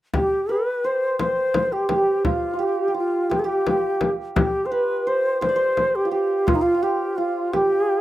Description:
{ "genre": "Persian modal ensemble", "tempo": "57 BPM (dotted quarters)", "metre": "6/8", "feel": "straight", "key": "C avaz esfahan", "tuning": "A4 = 440 Hz", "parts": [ { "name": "santur", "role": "second line", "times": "0.1-8.0 s", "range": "F4 to D5", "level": "-25 LUFS", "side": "right 3 dB", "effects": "none" }, { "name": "frame drum", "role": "percussion", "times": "0.1-7.7 s", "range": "none", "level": "-24 LUFS", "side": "left 2 dB", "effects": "none" }, { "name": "bright reedy ney", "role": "melody", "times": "0.2-8.0 s", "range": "Eb4 to C5", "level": "-21 LUFS", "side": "left 1 dB", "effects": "none" } ], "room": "moderate studio ambience, RT60 0.5 s", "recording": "rough home demo mix", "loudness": "-19 LUFS", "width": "side -15 dB against mid", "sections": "0.1-8.0 A section", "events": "none", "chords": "none" }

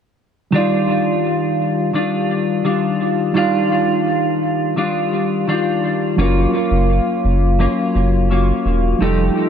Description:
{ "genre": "indie pop", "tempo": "85 BPM", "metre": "4/4", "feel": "straight", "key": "Eb major", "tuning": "A4 = 440 Hz", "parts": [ { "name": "clean electric guitar", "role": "accompaniment", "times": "0.5-9.5 s", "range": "Eb3 to G4", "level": "-17 LUFS", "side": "left 2 dB", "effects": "analog chorus, warbly pitch drift, tape echo" }, { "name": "mellow reed electric piano", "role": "accompaniment", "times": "0.5-9.5 s", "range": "Gb3 to F5", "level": "-22 LUFS", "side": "right 5 dB", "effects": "fast tremolo, tape echo" }, { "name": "round analog bass", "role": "bass", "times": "6.2-9.3 s", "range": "Fb1 to Gb1", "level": "-16 LUFS", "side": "equal", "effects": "none" } ], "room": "light reverb, digital ambience", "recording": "echo-heavy mix", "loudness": "-15 LUFS", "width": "side -8 dB against mid", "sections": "0.5-9.5 A section", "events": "none", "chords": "0.5 Ebmaj9; 6.2 Gbmaj7" }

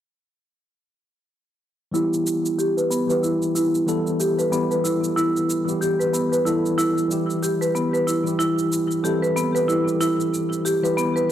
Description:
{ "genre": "organic downtempo", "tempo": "93 BPM", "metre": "4/4", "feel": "swing 58% on 16ths", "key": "E minor", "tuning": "A4 = 440 Hz", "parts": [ { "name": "mellow tine electric piano", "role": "accompaniment", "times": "1.9-11.3 s", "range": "E3 to A4", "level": "-25 LUFS", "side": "left 2 dB", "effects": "medium stereo tremolo, tape echo" }, { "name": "marimba with medium mallets", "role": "arpeggios", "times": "1.9-11.3 s", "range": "B3 to B4", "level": "-21 LUFS", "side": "right 1 dB", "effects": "low-pass filter, tape echo" }, { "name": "shaker", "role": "drums", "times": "1.9-11.3 s", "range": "none", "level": "-32 LUFS", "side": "right 2 dB", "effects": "none" } ], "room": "moderate lush hall reverb, RT60 1.6 s, studio reverb", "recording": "dry, gritty hardware recording", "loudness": "-19 LUFS", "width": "side -11 dB against mid", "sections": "1.9-11.3 A section", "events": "filter sweep on marimba 1.9-11.3", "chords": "1.9 Em; 7.1 C/E" }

